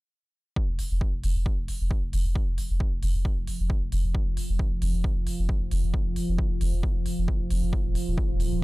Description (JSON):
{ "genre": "driving peak-time techno", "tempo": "134 BPM", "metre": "4/4", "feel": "straight", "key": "unclear", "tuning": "A4 = 439 Hz", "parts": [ { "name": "deep dark ambient pad", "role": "drone", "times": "2.6-8.6 s", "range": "F3", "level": "-34 LUFS", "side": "right 1 dB", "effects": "chorus, built-in reverb, sidechain pumping" }, { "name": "electronic kick drum", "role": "drums", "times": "0.6-8.3 s", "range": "none", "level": "-28 LUFS", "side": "equal", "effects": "overdrive" }, { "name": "saturated sub bass", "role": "bass", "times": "0.7-8.6 s", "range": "Eb1 to F1", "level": "-26 LUFS", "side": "equal", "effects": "overdrive, sidechain pumping, low-pass filter" }, { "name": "electronic hi-hat", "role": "drums", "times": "0.8-8.5 s", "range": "none", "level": "-41 LUFS", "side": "right 1 dB", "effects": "none" } ], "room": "little or no reverb", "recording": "none", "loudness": "-24 LUFS", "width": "side -20 dB against mid", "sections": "0.6-8.6 A section", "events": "none", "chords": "0.6 N.C.; 7.7 Ebsus2" }